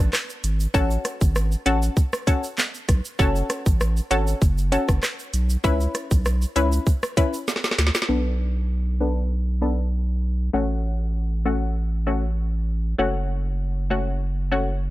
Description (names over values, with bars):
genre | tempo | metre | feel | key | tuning
dancehall | 98 BPM | 4/4 | straight | B dorian | A4 = 441 Hz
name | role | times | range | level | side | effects
saturated sub bass | bass | 0.0-14.9 s | F#1 to D2 | -23 LUFS | equal | none
island pop drum kit | drums | 0.1-8.2 s | handclaps, hi-hat, kick drum, rim click, shaker, snare drum | -22 LUFS | equal | none
egg shaker and timbales | percussion | 0.1-8.1 s | none | -38 LUFS | right 10 dB | none
punchy chord stab | accompaniment | 0.7-14.7 s | A3 to B4 | -25 LUFS | left 2 dB | chorus, low-pass filter
room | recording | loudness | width
little or no reverb | none | -20 LUFS | side -17 dB against mid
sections
0.0-8.1 A section; 8.1-14.9 B section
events
drum fill 7.5-8.1; filter sweep on synth stab 8.1-14.9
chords
0.0 N.C.; 0.7 A6; 3.2 F#m; 5.6 C#m7; 8.1 Bm7; 10.5 A6; 13.0 F#m